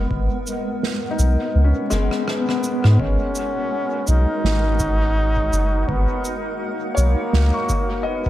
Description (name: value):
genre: ambient dub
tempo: 83 BPM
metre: 4/4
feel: swing 57% on 16ths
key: G# minor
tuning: A4 = 444 Hz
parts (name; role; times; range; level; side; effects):
- granular cloud pad; sustained chords; 0.0-8.3 s; G#3 to F#5; -27 LUFS; equal; built-in reverb
- felt-muted upright piano; arpeggios; 0.0-8.3 s; G#3 to C#6; -29 LUFS; left 3 dB; dub echo
- soft dub sub bass; bass; 0.0-7.5 s; F#1 to G#2; -17 LUFS; equal; none
- bubbling stepped-filter texture; texture; 0.0-8.3 s; B3 to F#4; -32 LUFS; left 2 dB; chorus, built-in reverb
- electronic kick drum; drums; 0.1-8.3 s; none; -26 LUFS; equal; none
- cabasa, snare drum and rim click; drums; 0.5-7.9 s; none; -28 LUFS; right 4 dB; dub echo
- mellow trombone; melody; 2.3-8.3 s; A#3 to D#4; -24 LUFS; equal; dub echo
room: light reverb, small room ambience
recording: none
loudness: -18 LUFS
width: side -14 dB against mid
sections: 0.0-3.0 A section; 3.0-8.3 B section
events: kick drops out 1.6-3.0; drum fill 1.9-3.0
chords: 0.0 G#m9; 3.0 G#7sus2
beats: | 0.10 0.83 1.55 2.27 | 3.00 3.72 4.44 5.17 | 5.89 6.61 7.33 8.06